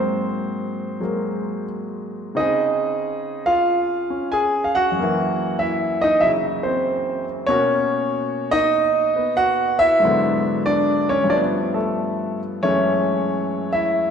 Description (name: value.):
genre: solo jazz.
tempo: 94 BPM.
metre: 4/4.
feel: swing 67% on 8ths, uneven beats, rubato.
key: unclear.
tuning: A4 = 441 Hz.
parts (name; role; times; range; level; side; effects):
clear concert grand piano; solo; 0.0-14.1 s; Gb2 to Ab5; -18 LUFS; equal; none.
room: wet concert hall reverb, RT60 2.2 s.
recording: recorded in a church or concert hall.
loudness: -18 LUFS.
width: side -7 dB against mid.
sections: 0.0-2.4 A section; 2.4-14.1 B section.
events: none.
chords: 0.0 Ab9; 2.4 Dbmaj9; 5.0 Gb7; 7.5 Cbmaj9; 10.0 Abm7b5; 11.3 G9; 12.6 Gbm9.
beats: 0.35 1.02 1.70 | 2.37 3.03 3.68 4.33 | 4.97 5.61 6.24 6.87 | 7.50 8.12 8.75 9.38 | 10.02 10.66 11.31 11.97 | 12.64 13.30 13.95.